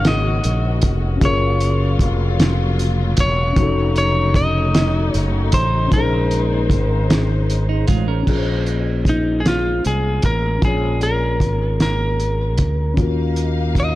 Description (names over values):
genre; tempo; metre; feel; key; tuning
slow six-eight R&B; 51 BPM (dotted quarters); 6/8; straight; Bb minor; A4 = 444 Hz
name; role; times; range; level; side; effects
lightly driven lead guitar; melody; 0.0-14.0 s; Eb4 to Eb5; -22 LUFS; equal; digital delay
mellow tine electric piano; accompaniment; 0.0-14.0 s; Db4 to Db5; -26 LUFS; left 5 dB; none
dark studio string section; sustained chords; 0.0-14.0 s; Db3 to F5; -28 LUFS; left 2 dB; none
fretless electric bass; bass; 0.0-14.0 s; E1 to Eb2; -19 LUFS; equal; analog chorus
cloth-damped thuddy drum kit; drums; 0.0-13.9 s; crash cymbal, hi-hat, kick drum, snare drum; -19 LUFS; equal; none
clean electric guitar; second line; 7.7-8.4 s; Ab3 to Bb4; -26 LUFS; right 9 dB; spring reverb
room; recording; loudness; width
small room ambience; dark, warm production; -15 LUFS; side -16 dB against mid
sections
0.0-8.3 A section; 8.3-14.0 B section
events
lead electric guitar solo 8.3-14.0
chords
0.0 Ab9sus4; 1.2 Gbmaj7; 3.6 F7b9b13; 5.9 Bbm11; 8.3 Bbm9; 13.0 Ebm9